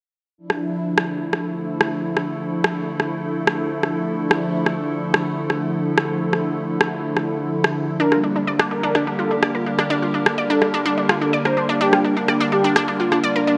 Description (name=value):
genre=melodic techno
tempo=126 BPM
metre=4/4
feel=straight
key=D minor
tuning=A4 = 440 Hz
part: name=evolving wavetable pad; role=sustained chords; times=0.8-13.6 s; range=D3 to Bb4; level=-28 LUFS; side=equal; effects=chorus, built-in reverb
part: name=brassy analog pad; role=stabs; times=0.4-13.6 s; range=F3 to E4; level=-27 LUFS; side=equal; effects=subtle chorus, delay
part: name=electronic rim click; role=drums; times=0.5-13.2 s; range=none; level=-23 LUFS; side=equal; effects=overdrive, studio reverb
part: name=mellow synth brass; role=melody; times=8.0-13.5 s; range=D4 to C5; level=-26 LUFS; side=equal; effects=chorus, delay
part: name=unison pluck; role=arpeggios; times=8.0-13.5 s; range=D4 to D5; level=-23 LUFS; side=equal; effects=delay
room=wet plate reverb, RT60 2.4 s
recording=bright 1980s-style digital production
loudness=-21 LUFS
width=mono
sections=0.4-13.6 A section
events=none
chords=0.4 Dmadd9; 8.0 Gm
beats=| 0.38 0.85 1.33 1.81 | 2.28 2.76 3.24 3.71 | 4.19 4.67 5.14 5.62 | 6.09 6.57 7.04 7.52 | 8.00 8.47 8.95 9.43 | 9.90 10.38 10.86 11.33 | 11.81 12.28 12.76 13.24